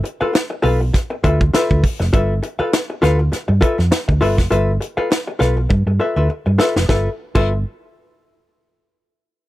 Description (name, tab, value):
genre	funk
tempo	101 BPM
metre	4/4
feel	swing 56% on 16ths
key	G mixolydian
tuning	A4 = 440 Hz
part	vintage hollow-body jazz guitar	accompaniment	0.0-7.5 s	F4 to F5	-19 LUFS	left 2 dB	none
part	tight funk drum kit	drums	0.1-7.5 s	crash cymbal, hi-hat, kick drum, snare drum	-18 LUFS	equal	none
part	hollow-body short-scale fingered electric bass	bass	0.2-7.6 s	F1 to G2	-17 LUFS	equal	none
room	studio ambience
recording	dry, close 1970s-style studio recording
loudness	-15 LUFS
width	side -16 dB against mid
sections	0.0-6.9 A section; 6.9-9.3 B section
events	drum fill 5.7-6.9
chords	0.0 G13